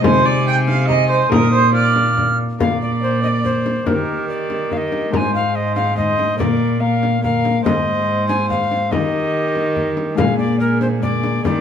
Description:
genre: classical, renaissance-style consort dance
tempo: 142 BPM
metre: 3/4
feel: straight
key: unclear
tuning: A4 = 440 Hz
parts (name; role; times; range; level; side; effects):
- alto recorder; melody; 0.0-11.6 s; Bb4 to F6; -22 LUFS; left 2 dB; none
- rich viola; second line; 0.0-11.6 s; G4 to G5; -21 LUFS; right 4 dB; none
- Celtic harp; accompaniment; 0.0-11.6 s; Ab2 to Eb5; -22 LUFS; left 6 dB; none
- rich cello; bass; 0.0-11.6 s; Ab2 to Eb3; -20 LUFS; right 2 dB; none
- frame drum; percussion; 0.0-11.6 s; none; -23 LUFS; left 2 dB; none
room: wet stone room reverb, RT60 1.2 s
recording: heard from further back in the room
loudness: -15 LUFS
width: side -8 dB against mid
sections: 0.0-2.6 A section; 2.6-11.6 B section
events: none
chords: 0.0 Ab/C; 1.3 Bbsus4; 1.7 Bb; 3.9 Eb; 5.1 Ab; 6.4 Bb; 7.7 Ab; 8.9 Eb; 10.2 Bb7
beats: | 0.04 0.47 0.89 | 1.31 1.74 2.17 | 2.60 3.02 3.44 | 3.87 4.29 4.71 | 5.13 5.55 5.97 | 6.39 6.82 7.24 | 7.66 8.08 8.50 | 8.92 9.34 9.76 | 10.18 10.60 11.03 | 11.45

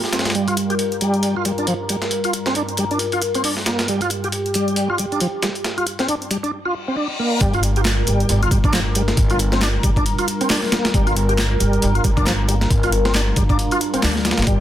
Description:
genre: breakbeat, breaks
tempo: 136 BPM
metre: 4/4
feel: swing 58% on 16ths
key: G minor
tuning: A4 = 445 Hz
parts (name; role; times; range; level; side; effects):
- phased analog pad; sustained chords; 0.0-14.6 s; G2 to D5; -25 LUFS; equal; phaser, chorus, sidechain pumping
- breakbeat sampler-style drum kit; drums; 0.0-14.6 s; hi-hat, kick drum, snare drum; -21 LUFS; equal; overdrive, high-pass filter on hats, high-pass filter on snare, high-pass filter on kick, high-pass filter on room
- overdriven tonewheel organ; riff; 0.1-14.6 s; F3 to G4; -22 LUFS; equal; chorus vibrato, slow rotary speaker, low-pass filter, digital delay
- punchy analog drum machine; drums; 0.1-14.6 s; handclaps, hi-hat; -27 LUFS; equal; none
- reverse cymbal; sound effects; 6.7-7.4 s; none; -27 LUFS; left 5 dB; none
- upright bass; bass; 7.4-14.6 s; G1 to D2; -20 LUFS; equal; tube saturation
room: light reverb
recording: dense, heavily limited modern master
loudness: -17 LUFS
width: side -12 dB against mid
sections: 0.0-7.4 A section; 7.4-14.6 B section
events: reverse cymbal 6.7-7.4; drop 7.4-14.6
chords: 0.0 Gm7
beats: | 0.35 0.80 1.24 1.68 | 2.12 2.56 3.00 3.44 | 3.88 4.32 4.77 5.21 | 5.65 6.09 6.53 6.97 | 7.41 7.85 8.29 8.74 | 9.18 9.62 10.06 10.50 | 10.94 11.38 11.82 12.27 | 12.71 13.15 13.59 14.03 | 14.47

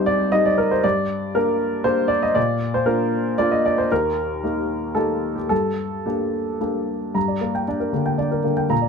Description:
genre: neoclassical minimalist piano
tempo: 107-120 BPM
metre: 3/4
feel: rubato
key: G minor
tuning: A4 = 438 Hz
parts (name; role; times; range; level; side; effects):
- warm upright piano; solo; 0.0-8.9 s; C2 to Bb5; -19 LUFS; equal; none
room: light reverb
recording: dark, warm production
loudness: -19 LUFS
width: side -5 dB against mid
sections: 0.0-7.2 A section; 7.2-8.9 B section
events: none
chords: 0.0 Cm; 0.8 Gm; 2.4 Bb; 3.9 Eb; 5.5 Gm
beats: 0.33 | 0.83 1.35 1.85 | 2.36 2.87 3.38 | 3.90 4.43 4.96 | 5.51 6.05 6.60 | 7.16 7.68 8.20 | 8.71

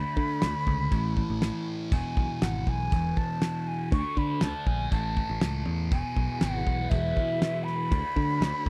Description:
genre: psychedelic rock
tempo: 120 BPM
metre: 4/4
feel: straight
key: E mixolydian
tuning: A4 = 440 Hz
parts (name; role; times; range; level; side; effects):
- mellow hollow silver concert flute; melody; 0.0-8.7 s; E5 to C#6; -35 LUFS; equal; slapback echo
- thick fuzz guitar; riff; 0.0-8.7 s; E2 to D4; -36 LUFS; equal; distortion, phaser
- picked electric bass; bass; 0.2-8.7 s; E1 to D3; -33 LUFS; equal; none
- cloth-damped thuddy drum kit; drums; 0.2-8.7 s; crash cymbal, kick drum, snare drum; -31 LUFS; equal; none
- string machine, full ensemble; sustained chords; 6.1-8.7 s; D4 to C#5; -41 LUFS; equal; ensemble chorus
room: little or no reverb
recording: dry, close 1970s-style studio recording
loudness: -28 LUFS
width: mono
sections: 0.0-8.7 A section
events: none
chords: 0.0 D5; 0.9 A5; 1.9 E; 3.9 D5; 4.9 A; 5.9 Eadd9; 7.9 Dmaj7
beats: 0.43 0.93 1.43 | 1.93 2.43 2.93 3.43 | 3.93 4.43 4.93 5.43 | 5.93 6.43 6.92 7.42 | 7.92 8.42

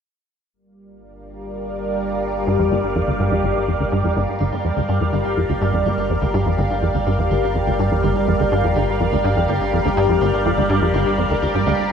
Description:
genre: ambient, sequencer-driven space music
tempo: 124 BPM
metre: 4/4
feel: straight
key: unclear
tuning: A4 = 443 Hz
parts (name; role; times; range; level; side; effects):
- lush unison pad; sustained chords; 1.4-11.9 s; G3 to F5; -20 LUFS; left 1 dB; chorus, phaser
- warm sub bass; bass; 0.5-11.9 s; G1; -30 LUFS; equal; none
- wind-like tuned noise texture; texture; 1.8-4.4 s; D5; -32 LUFS; right 7 dB; built-in reverb
- tight sequencer bass; riff; 2.5-11.7 s; G1 to G2; -20 LUFS; equal; ensemble chorus, analog delay
- clean electric guitar; arpeggios; 4.4-11.9 s; C4; -39 LUFS; right 2 dB; none
room: wet spring reverb, RT60 2.5 s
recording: echo-heavy mix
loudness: -17 LUFS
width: side -7 dB against mid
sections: 0.5-4.4 A section; 4.4-11.9 B section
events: fade-in on sub bass 0.5-4.4; fade-in on synth texture 0.5-4.4; filter sweep on analog synth pad 0.5-4.4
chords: 0.5 Gm7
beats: | 0.54 1.02 1.50 1.99 | 2.47 2.96 3.44 3.92 | 4.41 4.89 5.37 5.86 | 6.34 6.83 7.31 7.79 | 8.28 8.76 9.24 9.73 | 10.21 10.70 11.18 11.66

